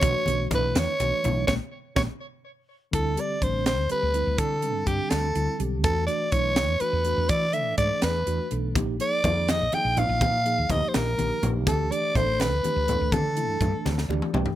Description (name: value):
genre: electric jazz fusion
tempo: 82 BPM (dotted quarters)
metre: 6/8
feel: straight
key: unclear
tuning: A4 = 440 Hz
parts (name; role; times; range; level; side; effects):
- growling soprano saxophone; melody; 0.0-14.1 s; G4 to G5; -26 LUFS; equal; none
- mellow tine electric piano; accompaniment; 0.0-14.6 s; D3 to G5; -31 LUFS; right 1 dB; medium stereo tremolo
- woody fretless electric bass; bass; 0.0-14.4 s; A1 to E3; -28 LUFS; equal; none
- crisp fusion drum kit; drums; 0.0-14.6 s; hi-hat, kick drum, snare drum, toms; -28 LUFS; equal; none
- congas; percussion; 0.0-2.1, 8.8-14.5 s; none; -31 LUFS; left 1 dB; none
room: little or no reverb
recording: none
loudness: -22 LUFS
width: side -13 dB against mid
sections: 0.0-2.9 A section; 2.9-14.6 B section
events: drum fill 1.5-2.9, 13.9-14.6; band accent 1.5-2.9; tine electric piano fill 2.2-2.9, 13.9-14.6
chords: 0.0 Bm11; 1.5 Bbm7; 2.2 N.C.; 2.9 D9sus4; 5.8 E9sus4; 8.8 Bb7sus4; 11.7 Dsus4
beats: | 0.03 0.75 | 1.48 2.20 | 2.93 3.66 | 4.38 5.11 | 5.84 6.57 | 7.30 8.03 | 8.76 9.48 | 10.21 10.94 | 11.67 12.40 | 13.13 13.86